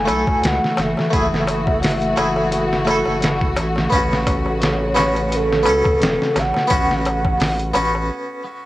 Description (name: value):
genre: trip hop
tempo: 86 BPM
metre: 4/4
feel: swing 55% on 16ths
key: unclear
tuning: A4 = 440 Hz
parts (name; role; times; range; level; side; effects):
- pure breathy sine lead; melody; 0.0-8.1 s; A4 to G#5; -22 LUFS; equal; lush chorus, cassette tape
- harpsichord; accompaniment; 0.0-8.4 s; A3 to A4; -22 LUFS; equal; tremolo, low-pass filter, cassette tape, tape echo
- rich studio string section; sustained chords; 0.0-8.1 s; C#3 to F#4; -23 LUFS; equal; cassette tape
- round analog bass; bass; 0.0-8.1 s; E1 to C#2; -25 LUFS; equal; none
- trip hop sampler-style drum kit; drums; 0.1-7.9 s; hi-hat, kick drum, snare drum; -21 LUFS; equal; cassette tape
- darbuka; percussion; 0.1-8.1 s; none; -27 LUFS; left 1 dB; none
room: light reverb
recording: home recording on cassette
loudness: -16 LUFS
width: side -16 dB against mid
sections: 0.0-8.7 A section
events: break 8.1-8.7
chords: 0.0 F#m7; 3.9 A6